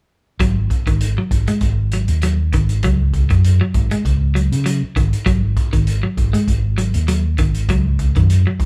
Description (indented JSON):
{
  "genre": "afrobeat",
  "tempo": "99 BPM",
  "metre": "4/4",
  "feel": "swing 54% on 16ths",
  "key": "unclear",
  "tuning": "A4 = 439 Hz",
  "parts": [
    { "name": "clean electric guitar", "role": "arpeggios", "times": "0.4-8.6 s", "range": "D#3 to G#3", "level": "-24 LUFS", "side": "equal", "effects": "none" },
    { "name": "fingered electric bass", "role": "bass", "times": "0.4-8.7 s", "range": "G#1 to C#3", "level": "-19 LUFS", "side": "equal", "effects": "none" },
    { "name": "vintage drum kit", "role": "drums", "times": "0.4-8.7 s", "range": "hi-hat, kick drum", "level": "-23 LUFS", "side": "equal", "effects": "none" }
  ],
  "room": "light reverb",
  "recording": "band playing live in one room",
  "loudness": "-17 LUFS",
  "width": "mono",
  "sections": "0.4-8.7 A section",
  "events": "none",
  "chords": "0.4 G#5; 2.8 C#sus4; 5.3 G#5; 7.7 C#sus24"
}